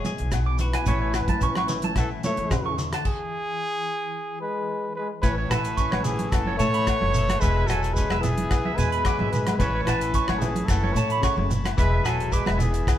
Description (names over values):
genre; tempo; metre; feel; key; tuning
highlife guitar band; 110 BPM; 4/4; straight; A major; A4 = 440 Hz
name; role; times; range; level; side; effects
breathy trumpet; melody; 0.0-13.0 s; G#4 to C#5; -29 LUFS; equal; none
clear trombone; second line; 0.0-13.0 s; E3 to A3; -32 LUFS; left 4 dB; none
semi-hollow electric guitar; accompaniment; 0.0-13.0 s; A2 to A4; -34 LUFS; left 4 dB; tremolo
damped 70s drum kit; drums; 0.0-13.0 s; crash cymbal, hi-hat, kick drum, rim click; -27 LUFS; equal; none
congas; percussion; 0.0-12.7 s; none; -32 LUFS; right 2 dB; none
shekere; percussion; 0.1-13.0 s; none; -32 LUFS; right 2 dB; none
upright bass; bass; 0.2-13.0 s; E1 to A2; -27 LUFS; equal; none
agogo bells; percussion; 0.3-13.0 s; none; -36 LUFS; left 10 dB; none
electric guitar at the edge of break-up; arpeggios; 0.5-12.6 s; C#5 to D6; -30 LUFS; right 5 dB; none
combo organ; sustained chords; 5.2-13.0 s; A4 to B5; -39 LUFS; equal; none
room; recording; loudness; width
moderate stone room reverb, RT60 1.3 s; band playing live in one room; -22 LUFS; side -11 dB against mid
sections
0.0-5.2 A section; 5.2-13.0 B section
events
stop 3.1-5.2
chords
0.0 E; 0.9 Aadd9; 3.1 N.C.; 5.2 Aadd9; 7.4 E; 9.6 Aadd9; 11.8 E